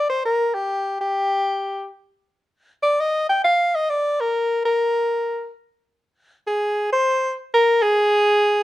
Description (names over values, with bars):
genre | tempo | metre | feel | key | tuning
jazz | 132 BPM | 4/4 | swing 65% on 8ths | unclear | A4 = 440 Hz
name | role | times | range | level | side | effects
breathy soprano saxophone | solo | 0.0-8.6 s | G4 to G5 | -18 LUFS | equal | none
room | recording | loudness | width
moderate studio reverb, RT60 0.8 s | dark, warm production | -18 LUFS | side -16 dB against mid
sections
0.0-8.6 A section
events
none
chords
none